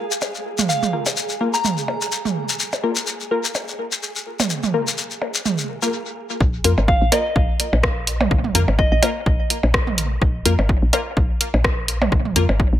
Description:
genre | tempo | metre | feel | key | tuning
minimal techno | 126 BPM | 4/4 | swing 56% on 16ths | unclear | A4 = 439 Hz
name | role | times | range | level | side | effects
flickering grainy texture | texture | 0.0-5.9 s | Ab4 | -32 LUFS | right 3 dB | built-in reverb, sidechain pumping
shekere | percussion | 0.1-5.9 s | none | -24 LUFS | left 4 dB | tape echo
electronic percussion blips and toms | percussion | 0.2-12.6 s | none | -24 LUFS | right 3 dB | analog delay
soft synth bell | melody | 0.7-2.0, 6.9-9.0 s | Eb5 to Bb5 | -25 LUFS | right 1 dB | chorus, tape echo
wavetable chord stab | stabs | 0.9-12.4 s | Bb3 to Bb4 | -25 LUFS | left 4 dB | tape echo
woody FM bass | bass | 6.4-12.8 s | Ab1 to F2 | -20 LUFS | equal | tube saturation, sidechain pumping
electronic kick drum | drums | 6.4-12.7 s | none | -20 LUFS | equal | overdrive
punchy analog drum machine | drums | 6.6-12.5 s | hi-hat, rim click | -21 LUFS | equal | overdrive, low-pass filter on hats, low-pass filter on snare, tape echo
room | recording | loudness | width
light reverb, digital ambience | echo-heavy mix | -18 LUFS | side -12 dB against mid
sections
0.0-6.4 A section; 6.4-12.8 B section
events
filter sweep on synth stab 0.0-6.4; stop 5.9-6.4; drop 6.4-12.8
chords
0.0 Bb5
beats
0.22 | 0.69 1.17 1.65 2.12 | 2.60 3.07 3.55 4.03 | 4.50 4.98 5.45 5.93 | 6.41 6.88 7.36 7.83 | 8.31 8.79 9.26 9.74 | 10.22 10.69 11.17 11.64 | 12.12 12.60

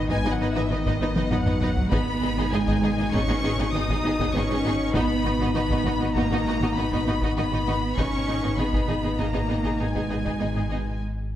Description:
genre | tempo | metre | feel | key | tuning
cinematic, hybrid orchestral and electronic film score | 99 BPM | 5/4 | straight | G# minor | A4 = 439 Hz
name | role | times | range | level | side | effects
warm symphonic violin section | melody | 0.0-11.0 s | D#5 to D#6 | -31 LUFS | left 2 dB | none
warm French horn section | sustained chords | 0.0-11.0 s | B2 to D#4 | -30 LUFS | left 5 dB | none
sub bass with octave | bass | 0.0-11.4 s | G#1 | -30 LUFS | equal | none
warm symphonic cello section | bass | 0.0-11.0 s | D#3 to D#4 | -29 LUFS | right 3 dB | none
rich studio violin section | second line | 0.1-10.8 s | F#4 to D#5 | -34 LUFS | left 2 dB | none
rich symphonic viola section | accompaniment | 0.1-10.8 s | B3 to D#4 | -31 LUFS | right 2 dB | none
rich symphonic double bass section | bass | 0.1-10.8 s | G#1 | -31 LUFS | right 2 dB | none
taiko ensemble | drums | 0.1-10.8 s | none | -30 LUFS | equal | none
room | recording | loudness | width
moderate scoring stage reverb, RT60 1.7 s | none | -22 LUFS | side -11 dB against mid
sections
0.0-11.4 A section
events
drum fill 1.2-1.9; break 11.0-11.4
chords
0.0 B/G#; 1.9 G#m; 4.9 B/G#; 8.0 G#m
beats
0.10 0.70 1.31 | 1.92 2.52 3.13 3.73 4.34 | 4.95 5.55 6.16 6.76 7.37 | 7.98 8.58 9.19 9.79 10.40 | 11.01

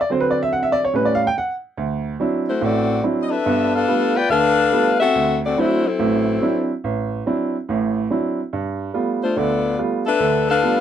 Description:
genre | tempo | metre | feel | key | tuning
jazz | 142 BPM | 4/4 | swing 65% on 8ths | D major | A4 = 440 Hz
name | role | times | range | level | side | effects
clear upright piano | accompaniment | 0.0-10.8 s | A1 to G5 | -20 LUFS | right 3 dB | none
warm saxophone section | melody | 2.5-10.8 s | F#3 to G5 | -18 LUFS | left 4 dB | none
room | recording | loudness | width
light reverb | dry, close 1970s-style studio recording | -17 LUFS | side -9 dB against mid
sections
0.0-1.8 A section; 1.8-10.8 B section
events
upright piano solo 0.0-1.8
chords
0.1 D7; 0.9 A7; 1.8 D9; 3.5 G9; 5.1 D9; 8.5 G9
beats
| 0.08 0.51 0.93 1.35 | 1.77 2.19 2.62 3.04 | 3.46 3.88 4.30 4.72 | 5.15 5.57 5.99 6.41 | 6.83 7.25 7.68 8.10 | 8.52 8.94 9.36 9.78 | 10.21 10.63

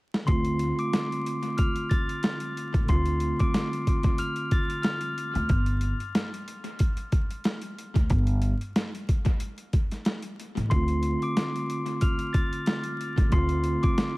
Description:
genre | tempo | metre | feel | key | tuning
hip hop, boom-bap hip-hop | 92 BPM | 4/4 | swing 56% on 16ths | D minor | A4 = 440 Hz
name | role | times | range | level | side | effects
boom bap sampler-style drum kit | drums | 0.1-14.1 s | hi-hat, kick drum, snare drum | -26 LUFS | equal | overdrive
mellow tine electric piano | accompaniment | 0.2-5.5, 10.7-14.2 s | D3 to F4 | -30 LUFS | right 1 dB | fast stereo tremolo, cassette tape, high-pass filter, low-pass filter, analog delay
glockenspiel with soft plastic mallets | melody | 0.3-5.1, 10.7-14.2 s | C6 to A7 | -33 LUFS | left 2 dB | high-pass filter, low-pass filter, analog delay
upright bass | bass | 0.3-13.7 s | G1 to D2 | -26 LUFS | equal | none
room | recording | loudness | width
little or no reverb | echo-heavy mix, vinyl crackle | -24 LUFS | side -21 dB against mid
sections
0.3-14.2 A section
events
break 0.0; drum fill 0.0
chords
0.3 Dm7; 5.5 G5; 10.7 Dm7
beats
| 0.28 0.93 1.58 2.23 | 2.89 3.54 4.19 4.84 | 5.50 6.15 6.80 7.45 | 8.11 8.76 9.41 10.06 | 10.71 11.37 12.02 12.67 | 13.32 13.97

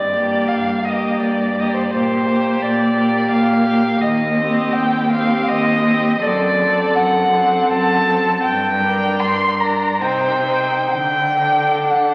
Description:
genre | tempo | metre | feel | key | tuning
classical, slow romantic movement for string quartet | 58-87 BPM | 3/4 | rubato | unclear | A4 = 440 Hz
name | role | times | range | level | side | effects
rich violin | melody | 0.0-12.1 s | C5 to C6 | -20 LUFS | equal | none
rich cello | bass | 0.0-12.1 s | Eb2 to D3 | -24 LUFS | equal | none
rich violin | second line | 0.1-12.1 s | G4 to C5 | -26 LUFS | equal | none
rich viola | accompaniment | 0.1-12.1 s | Bb3 to Eb4 | -26 LUFS | equal | none
room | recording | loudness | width
wet concert hall reverb, RT60 2.1 s | very old 78 rpm record, vinyl crackle | -17 LUFS | mono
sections
0.0-12.1 A section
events
none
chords
0.0 Gm; 1.9 Gm/Bb; 4.0 Cm/Eb; 6.2 D7/F#; 8.4 Gm; 10.0 Cm; 10.9 D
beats
0.49 1.21 | 1.92 2.62 3.31 | 4.01 4.73 5.47 | 6.21 6.94 7.68 | 8.44 9.20 10.02 | 10.92 11.89

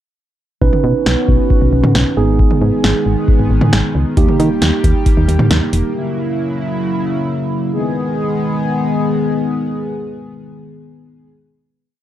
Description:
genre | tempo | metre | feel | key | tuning
synth-pop | 135 BPM | 4/4 | straight | G# minor | A4 = 441 Hz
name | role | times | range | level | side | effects
mellow tine electric piano | accompaniment | 0.6-5.9 s | A#3 to B4 | -18 LUFS | right 6 dB | none
chorused pulse-width pad | sustained chords | 0.6-11.3 s | C#3 to G#4 | -18 LUFS | left 2 dB | none
solid FM bass | bass | 0.6-5.8 s | E1 to D#3 | -15 LUFS | equal | none
electro analog drum machine | drums | 0.6-5.8 s | hi-hat, kick drum, snare drum, toms | -14 LUFS | equal | none
room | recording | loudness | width
light reverb, digital ambience | dark, warm production | -13 LUFS | side -12 dB against mid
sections
0.6-7.7 pre-chorus; 7.7-11.3 final chord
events
none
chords
0.6 Badd9; 2.2 G#m; 4.2 D#; 6.0 F#7; 7.7 G#m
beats
| 0.62 1.06 1.50 1.95 | 2.39 2.84 3.28 3.73 | 4.17 4.62 5.06 5.50 | 5.95 6.39 6.84 7.28 | 7.73 8.17 8.62 9.06 | 9.51 9.95 10.39 10.84

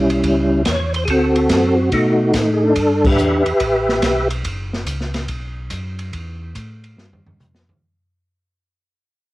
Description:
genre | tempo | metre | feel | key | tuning
soul jazz organ trio | 142 BPM | 4/4 | swing 67% on 8ths | unclear | A4 = 440 Hz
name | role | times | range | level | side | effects
percussive tonewheel organ | melody | 0.0-4.3 s | G3 to E5 | -15 LUFS | equal | slow rotary speaker, chorus vibrato, cassette tape
mellow tonewheel organ | bass | 0.0-7.8 s | F#1 to B2 | -23 LUFS | equal | slow rotary speaker
open jazz drum kit | drums | 0.1-7.8 s | crash cymbal, hi-hat, kick drum, ride cymbal, snare drum, toms | -23 LUFS | equal | cassette tape
room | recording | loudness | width
light reverb | home recording on cassette | -15 LUFS | side -18 dB against mid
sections
0.0-4.5 A section; 4.5-7.8 B section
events
band accent 3.0; fade-out 4.5-7.8; drum fill 7.0-7.8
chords
0.0 A9 (rootless); 1.1 D7; 1.9 B7; 2.8 Em7; 3.6 Asus2; 4.5 F#5; 5.3 B5; 6.1 A5; 7.0 Fsus2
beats
0.24 0.66 | 1.08 1.50 1.92 2.34 | 2.77 3.19 3.61 4.03 | 4.45 4.87 5.29 5.72 | 6.14 6.56 6.98 7.41

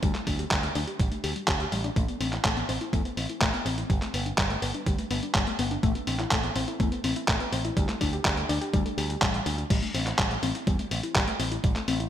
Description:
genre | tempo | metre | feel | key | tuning
italo disco | 124 BPM | 4/4 | straight | A minor | A4 = 443 Hz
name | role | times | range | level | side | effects
warbly dusty pluck | arpeggios | 0.0-12.1 s | G3 to G4 | -32 LUFS | left 3 dB | chorus, shimmer reverb, digital delay
picked electric bass with an envelope filter | bass | 0.0-12.1 s | G1 to E2 | -32 LUFS | right 1 dB | digital delay
dusty soul sampler-style drum kit | drums | 0.0-12.1 s | crash cymbal, handclaps, hi-hat | -29 LUFS | equal | overdrive, gated reverb
electronic kick drum | drums | 0.0-11.7 s | none | -28 LUFS | right 1 dB | overdrive
room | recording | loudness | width
moderate lush hall reverb, RT60 1.7 s, digital ambience | bright 1980s-style digital production | -25 LUFS | side -11 dB against mid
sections
0.0-9.7 A section; 9.7-12.1 B section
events
none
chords
0.0 Dsus4; 2.0 Am; 3.9 G; 5.8 Am; 7.8 Dsus4; 9.7 Am7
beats
| 0.03 0.51 0.99 1.48 | 1.96 2.44 2.93 3.41 | 3.90 4.38 4.86 5.35 | 5.83 6.32 6.80 7.28 | 7.77 8.25 8.73 9.22 | 9.70 10.19 10.67 11.15 | 11.64

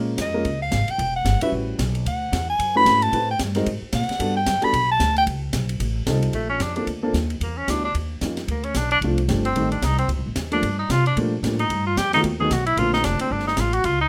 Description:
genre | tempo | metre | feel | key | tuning
jazz, small-group swing and bop | 224 BPM | 4/4 | swing 59% on 8ths | Bb major from 6.3 s | A4 = 440 Hz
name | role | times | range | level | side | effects
warm upright piano | accompaniment | 0.0-13.5 s | D3 to B4 | -28 LUFS | equal | none
upright bass | bass | 0.0-14.1 s | E1 to C3 | -27 LUFS | equal | none
breathy soprano saxophone | melody | 0.2-5.2 s | D#5 to B5 | -23 LUFS | equal | none
open jazz drum kit | drums | 0.2-13.9 s | hi-hat, kick drum, ride cymbal, snare drum | -32 LUFS | equal | none
warm tenor saxophone | second line | 6.3-14.1 s | A3 to Ab4 | -25 LUFS | equal | none
room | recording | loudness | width
light reverb | none | -22 LUFS | mono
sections
0.0-6.3 A section; 6.3-14.1 A section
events
soprano saxophone solo 0.0-6.3; tenor saxophone solo 6.3-14.1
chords
0.0 A#m7; 1.0 Em; 1.5 A13; 2.1 Dmaj13; 3.1 Am9; 3.7 G#sus2; 4.2 Gmaj9; 5.3 Bsus2; 5.8 F9; 6.3 Bbmaj9; 7.4 Em7; 8.0 Eb9; 8.5 Dm7; 9.6 Am7b5; 10.1 D5; 10.6 Gm9; 11.7 F9; 12.2 B7; 12.8 Bbmaj9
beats
0.18 0.45 0.72 | 0.99 1.26 1.52 1.79 | 2.06 2.33 2.60 2.86 | 3.13 3.40 3.67 3.94 | 4.20 4.47 4.74 5.01 | 5.27 5.54 5.81 6.08 | 6.34 6.61 6.88 7.15 | 7.42 7.68 7.95 8.22 | 8.49 8.76 9.03 9.29 | 9.56 9.83 10.10 10.37 | 10.63 10.90 11.17 11.44 | 11.71 11.97 12.24 12.51 | 12.78 13.05 13.31 13.58 | 13.85

